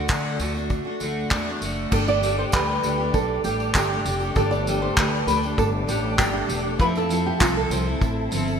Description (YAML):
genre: acoustic pop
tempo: 98 BPM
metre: 4/4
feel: straight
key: unclear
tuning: A4 = 440 Hz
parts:
  - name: felt-muted upright piano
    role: accompaniment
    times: 0.0-8.6 s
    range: A3 to E5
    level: -37 LUFS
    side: left 4 dB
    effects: none
  - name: picked steel-string acoustic guitar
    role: accompaniment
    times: 0.0-8.6 s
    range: D3 to A4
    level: -26 LUFS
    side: equal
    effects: double-tracked left and right
  - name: upright bass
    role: bass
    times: 0.0-8.6 s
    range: E1 to D3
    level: -28 LUFS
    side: equal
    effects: none
  - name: unplugged drum kit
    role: drums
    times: 0.1-8.5 s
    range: crash cymbal, handclaps, kick drum, tambourine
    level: -25 LUFS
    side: equal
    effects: gated reverb
  - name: tambourine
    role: percussion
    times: 0.1-8.6 s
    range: none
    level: -41 LUFS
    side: right 8 dB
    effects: none
  - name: nylon-string guitar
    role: melody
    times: 1.9-8.6 s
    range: F4 to D5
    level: -26 LUFS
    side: right 2 dB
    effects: wide subtle chorus
  - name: mellow tonewheel organ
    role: sustained chords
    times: 1.9-8.6 s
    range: A4 to D6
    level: -32 LUFS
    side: left 1 dB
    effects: chorus vibrato, stopped rotary speaker
room: moderate lush hall reverb, RT60 2.2 s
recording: bright 1980s-style digital production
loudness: -20 LUFS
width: side -7 dB against mid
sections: 0.0-1.9 A section; 1.9-8.6 B section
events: none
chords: 0.0 D; 1.9 Gsus2; 6.8 Fmaj7